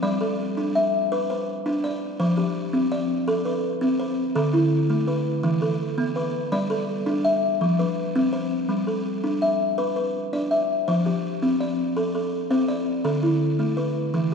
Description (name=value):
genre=southern african traditional, mbira-style interlocking cycle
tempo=111 BPM (dotted quarters)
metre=12/8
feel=straight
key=G mixolydian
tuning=A4 = 440 Hz
part: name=buzzing kalimba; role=solo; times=0.0-14.3 s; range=D3 to E5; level=-21 LUFS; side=equal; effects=none
room=wet church reverb, RT60 2.5 s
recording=recorded in a church or concert hall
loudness=-21 LUFS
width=side -6 dB against mid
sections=0.0-8.7 A section; 8.7-14.3 A section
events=none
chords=0.0 G; 2.2 F; 4.4 D5; 5.4 E5; 6.5 G; 7.6 F5; 8.7 G; 10.9 F; 13.1 D5